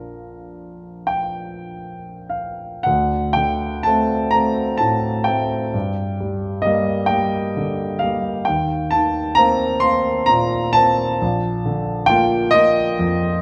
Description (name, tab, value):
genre	classical, romantic nocturne for solo piano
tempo	43 BPM (dotted quarters)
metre	6/8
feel	uneven beats, rubato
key	Bb major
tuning	A4 = 440 Hz
part	warm grand piano	solo	0.0-13.4 s	Bb1 to C6	-20 LUFS	equal	none
room	wet large studio reverb, RT60 1.3 s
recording	none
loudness	-19 LUFS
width	mono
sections	0.0-2.9 A section; 2.9-13.4 B section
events	none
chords	0.0 Bb; 2.9 D5; 5.7 Gm; 8.5 Eb5; 11.2 Bb